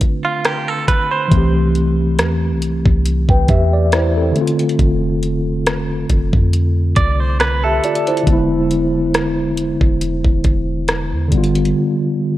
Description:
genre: contemporary R&B.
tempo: 69 BPM.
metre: 4/4.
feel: swing 54% on 16ths.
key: C major.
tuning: A4 = 440 Hz.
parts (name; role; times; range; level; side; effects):
mellow tine electric piano; accompaniment; 0.0-12.4 s; D3 to G5; -18 LUFS; equal; medium stereo tremolo.
smooth R&B drum kit; drums; 0.0-11.7 s; hi-hat, kick drum, rim click; -18 LUFS; equal; none.
direct-recorded clean electric guitar; arpeggios; 0.2-1.5, 7.0-8.2 s; F4 to D5; -20 LUFS; right 4 dB; spring reverb, ping-pong delay.
clean 808-style bass; bass; 1.3-11.7 s; E1 to F2; -18 LUFS; equal; none.
room: light reverb.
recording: worn, warbling old tape, cassette tape, warbly pitch drift.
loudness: -14 LUFS.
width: side -15 dB against mid.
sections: 0.0-12.4 A section.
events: break 11.8-12.4.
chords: 0.0 Dm7; 1.3 C6; 4.4 F6; 8.3 E7; 11.3 G7.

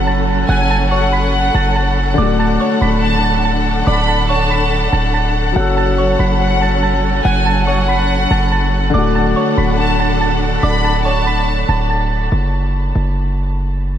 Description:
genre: hip hop.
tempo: 142 BPM.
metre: 4/4.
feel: half-time.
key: unclear.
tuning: A4 = 443 Hz.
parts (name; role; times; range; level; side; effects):
soft synth bell; melody; 0.0-12.3 s; C#5 to B6; -20 LUFS; right 1 dB; chorus, low-pass filter, ping-pong delay.
warm studio violin section; second line; 0.0-11.9 s; F#5 to B5; -22 LUFS; left 1 dB; ping-pong delay.
warm concert grand piano; accompaniment; 0.0-12.3 s; D3 to A4; -21 LUFS; left 3 dB; low-pass filter.
dark symphonic string section; sustained chords; 0.0-12.3 s; D3 to F#5; -21 LUFS; equal; none.
hard-hitting 808-style bass; bass; 0.0-14.0 s; D1 to F#1; -17 LUFS; equal; none.
room: moderate huge ambient reverb, RT60 7.5 s.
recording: dreamy mix soaked in reverb.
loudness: -13 LUFS.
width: side -10 dB against mid.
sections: 0.0-12.3 A section; 12.3-14.0 B section.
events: break 12.3-14.0.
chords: 0.0 F#m; 2.2 D; 5.6 F#m; 8.9 D; 12.3 N.C..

